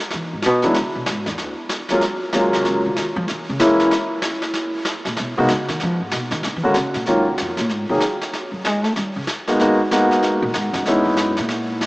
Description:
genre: jazz piano trio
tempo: 190 BPM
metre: 4/4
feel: swing 63% on 8ths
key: Eb minor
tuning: A4 = 440 Hz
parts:
  - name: upright bass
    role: bass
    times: 0.1-11.9 s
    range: Db2 to A3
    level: -24 LUFS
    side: equal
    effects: none
  - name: brushed snare drum and snare drum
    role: drums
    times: 0.1-11.9 s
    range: none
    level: -25 LUFS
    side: equal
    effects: none
  - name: clear concert grand piano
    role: melody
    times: 0.6-11.3 s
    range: D3 to Ab4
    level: -19 LUFS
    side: equal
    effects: none
room: wet cathedral reverb, RT60 5.2 s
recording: in a vast, echoing space, small speaker sound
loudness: -17 LUFS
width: side -22 dB against mid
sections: 0.0-7.1 A section; 7.1-11.9 A section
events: upright bass solo 0.0-11.9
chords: 0.0 Emaj7; 0.8 E7; 2.0 Gbmaj9; 3.3 Bbm7b5; 3.9 N.C.; 4.5 Abmadd9 (rootless); 5.8 Fm7b5; 6.4 Bb(#9); 7.1 Ebm7; 8.3 Gbmadd9; 9.0 Eb7 (rootless); 9.6 Abm9; 10.9 Dbm7

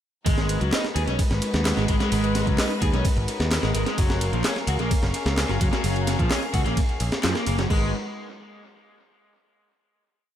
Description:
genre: breakbeat, breaks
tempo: 129 BPM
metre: 4/4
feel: straight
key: G# dorian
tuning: A4 = 441 Hz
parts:
  - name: warm chamber string section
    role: sustained chords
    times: 0.3-7.9 s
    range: G#3 to E#5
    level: -30 LUFS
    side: left 1 dB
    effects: sidechain pumping
  - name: raw garage guitar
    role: riff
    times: 0.3-7.9 s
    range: E#3 to G#4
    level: -29 LUFS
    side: equal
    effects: overdrive, vintage 12-bit sampler grit, tape echo
  - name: modern bright picked electric bass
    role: bass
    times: 0.3-7.9 s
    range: F#1 to F#2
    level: -25 LUFS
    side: equal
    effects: none
  - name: breakbeat sampler-style drum kit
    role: drums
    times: 0.3-7.8 s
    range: crash cymbal, hi-hat, kick drum, ride cymbal, snare drum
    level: -25 LUFS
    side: equal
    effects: tape echo
  - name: garage drum kit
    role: drums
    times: 0.3-7.7 s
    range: handclaps, hi-hat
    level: -34 LUFS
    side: equal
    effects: tape echo
room: light reverb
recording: echo-heavy mix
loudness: -21 LUFS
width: side -10 dB against mid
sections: 0.3-7.7 drop; 7.7-9.6 final chord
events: drop 0.3-7.7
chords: 0.3 G#m7; 4.0 F#maj7; 7.7 G#m7

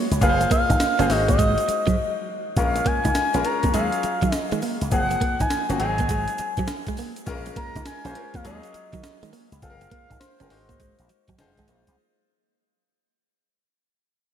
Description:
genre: R&B, new jack swing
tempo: 102 BPM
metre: 4/4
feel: swing 65% on 16ths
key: Bb minor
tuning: A4 = 445 Hz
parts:
  - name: bright concert grand piano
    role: accompaniment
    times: 0.0-12.0 s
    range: F3 to Db5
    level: -29 LUFS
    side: left 5 dB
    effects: none
  - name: direct-recorded clean electric guitar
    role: riff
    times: 0.0-11.8 s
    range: Gb3 to Eb4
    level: -29 LUFS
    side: right 5 dB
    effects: wide subtle chorus
  - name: slap bass with an envelope filter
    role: bass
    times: 0.1-12.0 s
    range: F1 to Eb3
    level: -26 LUFS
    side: equal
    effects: none
  - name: breakbeat sampler-style drum kit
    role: drums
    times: 0.1-12.0 s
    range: hi-hat, kick drum, snare drum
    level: -26 LUFS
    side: equal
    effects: gated reverb
  - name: egg shaker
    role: percussion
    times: 0.1-12.0 s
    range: none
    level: -40 LUFS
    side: right 7 dB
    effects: none
  - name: expressive synth lead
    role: melody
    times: 0.2-11.3 s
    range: C5 to Bb5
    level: -25 LUFS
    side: equal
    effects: chorus
room: moderate lush hall reverb, RT60 2.9 s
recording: bright 1980s-style digital production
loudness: -20 LUFS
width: side -9 dB against mid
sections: 0.0-12.0 A section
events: fade-out 0.0-12.0; break 2.0-2.6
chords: 0.2 Gbmaj9#11; 1.1 Ab7; 2.6 Bbm7; 3.7 Ebm11; 4.9 Gbmaj9#11; 5.8 Ab7; 7.3 Bbm7; 8.4 Ebm11; 9.6 Gbmaj9#11; 10.5 Ab7; 11.4 Fm7

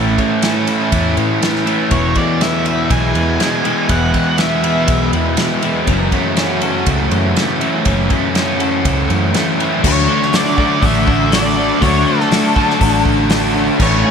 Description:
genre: rock, shoegaze and dream pop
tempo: 121 BPM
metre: 4/4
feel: straight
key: unclear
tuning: A4 = 438 Hz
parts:
  - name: twelve-string electric guitar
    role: arpeggios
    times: 0.0-14.1 s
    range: E3 to A4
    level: -25 LUFS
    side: left 6 dB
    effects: wide subtle chorus, ping-pong delay
  - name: distorted electric guitar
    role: riff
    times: 0.0-14.1 s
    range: E2 to D4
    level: -21 LUFS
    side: equal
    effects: distortion
  - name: overdriven electric guitar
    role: riff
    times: 0.0-14.1 s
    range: E2 to F#4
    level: -19 LUFS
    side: right 6 dB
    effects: reverse reverb
  - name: thick fuzz guitar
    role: riff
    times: 0.0-14.1 s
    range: E2 to F#4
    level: -19 LUFS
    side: left 5 dB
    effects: distortion, lush chorus
  - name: vintage muted fingered electric bass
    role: bass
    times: 0.0-14.0 s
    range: E1 to A2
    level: -18 LUFS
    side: equal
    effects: none
  - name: loose indie drum kit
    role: drums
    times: 0.2-13.9 s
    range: crash cymbal, hi-hat, kick drum, ride cymbal, snare drum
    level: -20 LUFS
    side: equal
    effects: none
  - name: octave-fuzz lead guitar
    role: melody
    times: 1.9-5.1, 9.9-14.1 s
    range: A4 to G#5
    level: -21 LUFS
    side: equal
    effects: distortion, ping-pong delay
room: wet cathedral reverb, RT60 6.8 s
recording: dreamy mix soaked in reverb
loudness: -12 LUFS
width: side -6 dB against mid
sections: 0.0-9.8 A section; 9.8-14.1 B section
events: none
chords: 0.0 A; 1.9 E; 5.9 F#m7; 9.8 D

